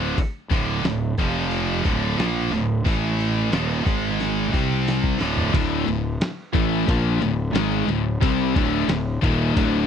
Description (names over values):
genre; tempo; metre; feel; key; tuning
heavy metal; 89 BPM; 4/4; straight; D minor; A4 = 440 Hz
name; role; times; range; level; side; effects
scooped high-gain guitar; riff; 0.0-9.9 s; D2 to C4; -26 LUFS; left 13 dB; distortion
scooped high-gain guitar; riff; 0.0-5.5 s; D2 to C4; -25 LUFS; right 10 dB; distortion
fuzz fingered electric bass; bass; 0.0-9.9 s; D1 to C2; -26 LUFS; left 1 dB; overdrive
lo-fi sampler-style drum kit; drums; 0.2-9.7 s; crash cymbal, hi-hat, kick drum, ride cymbal, snare drum, toms; -23 LUFS; equal; none
crunchy overdriven guitar; riff; 5.5-9.9 s; D2 to C4; -22 LUFS; equal; none
room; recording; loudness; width
little or no reverb; dry, close 1970s-style studio recording; -20 LUFS; side -8 dB against mid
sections
0.0-5.5 A section; 5.5-9.9 B section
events
drum fill 4.2-5.5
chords
0.0 D5; 1.2 F5; 1.8 Dm; 2.9 A5; 3.5 Eb5; 3.9 G#5; 4.5 C5; 5.2 D5; 5.5 Dm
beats
| 0.17 0.84 1.51 2.18 | 2.85 3.52 4.19 4.87 | 5.54 6.21 6.88 7.55 | 8.22 8.90 9.57